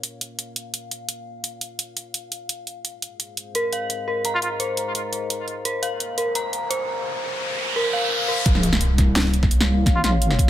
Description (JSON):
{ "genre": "half-time drum and bass", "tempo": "171 BPM", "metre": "4/4", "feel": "half-time", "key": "Bb minor", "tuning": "A4 = 441 Hz", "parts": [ { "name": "dark analog pad", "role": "sustained chords", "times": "0.0-10.5 s", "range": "Ab3 to F5", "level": "-35 LUFS", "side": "left 2 dB", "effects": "wide subtle chorus, sidechain pumping" }, { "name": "drum and bass drum kit", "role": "drums", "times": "0.0-10.5 s", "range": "hi-hat, snare drum", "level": "-24 LUFS", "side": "right 1 dB", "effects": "overdrive" }, { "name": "dark detuned synth bell", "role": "arpeggios", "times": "3.6-8.5 s", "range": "Bb4 to Bb5", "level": "-25 LUFS", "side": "left 1 dB", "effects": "chorus, digital delay" }, { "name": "trumpet with plunger mute", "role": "melody", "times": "4.3-4.5, 10.0-10.1 s", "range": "F4", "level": "-28 LUFS", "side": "equal", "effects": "digital delay" }, { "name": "riser and impact", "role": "sound effects", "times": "6.3-9.9 s", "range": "none", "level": "-27 LUFS", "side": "equal", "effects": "none" }, { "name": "deep soft wobble bass", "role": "bass", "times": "8.5-10.5 s", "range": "Bb1 to C2", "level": "-20 LUFS", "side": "equal", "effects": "chorus, tube saturation" }, { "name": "electronic kick drum", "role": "drums", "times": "8.5-10.5 s", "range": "none", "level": "-19 LUFS", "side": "equal", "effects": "overdrive" } ], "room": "light reverb, digital ambience", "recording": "none", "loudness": "-21 LUFS", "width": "side -12 dB against mid", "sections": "0.0-8.5 A section; 8.5-10.5 B section", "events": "filter sweep on analog synth pad 0.0-8.5; riser 6.3-8.5; drop 8.5-10.5; impact 8.5-9.9", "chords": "0.0 Bbm; 2.8 Ab; 8.5 Bbm" }